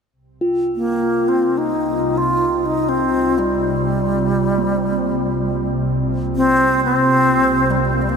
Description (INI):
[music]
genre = world meditative, free-time meditation music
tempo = free time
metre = none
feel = none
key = C minor pentatonic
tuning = A4 = 440 Hz
[part]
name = ethereal airy pad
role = drone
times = 0.9-8.2 s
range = C2 to C3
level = -23 LUFS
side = equal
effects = ensemble chorus, built-in reverb
[part]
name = quartz singing bowl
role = texture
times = 0.4-8.2 s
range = Bb3 to F4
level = -22 LUFS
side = equal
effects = none
[part]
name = bright alto flute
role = melody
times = 0.8-8.2 s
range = G3 to F4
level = -17 LUFS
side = equal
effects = diffuse ambient delay
[sound]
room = wet huge ambient reverb, RT60 7.8 s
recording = dreamy mix soaked in reverb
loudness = -15 LUFS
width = side -6 dB against mid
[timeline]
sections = 0.1-8.2 A section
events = none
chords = none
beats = free time